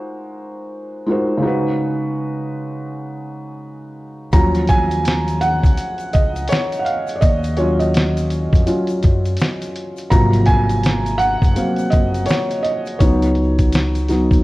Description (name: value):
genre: lo-fi hip hop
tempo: 83 BPM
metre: 4/4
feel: swing 61% on 16ths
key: Eb minor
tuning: A4 = 441 Hz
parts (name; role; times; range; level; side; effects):
- felt-muted upright piano; accompaniment; 0.0-14.4 s; C3 to Bb5; -19 LUFS; equal; low-pass filter
- upright bass; bass; 4.3-14.4 s; Gb1 to Gb2; -20 LUFS; equal; none
- lo-fi sampler-style drum kit; drums; 4.3-14.4 s; hi-hat, kick drum, snare drum; -16 LUFS; equal; none
- tube shaker; percussion; 4.3-14.4 s; none; -45 LUFS; left 6 dB; none
room: light reverb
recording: worn, warbling old tape, cassette tape, warbly pitch drift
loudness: -15 LUFS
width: side -19 dB against mid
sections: 0.0-4.3 A section; 4.3-14.4 B section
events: filter sweep on felt piano 0.0-4.3; felt piano solo 4.3-14.4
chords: 0.0 Ab13; 1.4 Db9sus4; 4.3 Ebm7; 10.1 Ab13; 13.0 Db9sus4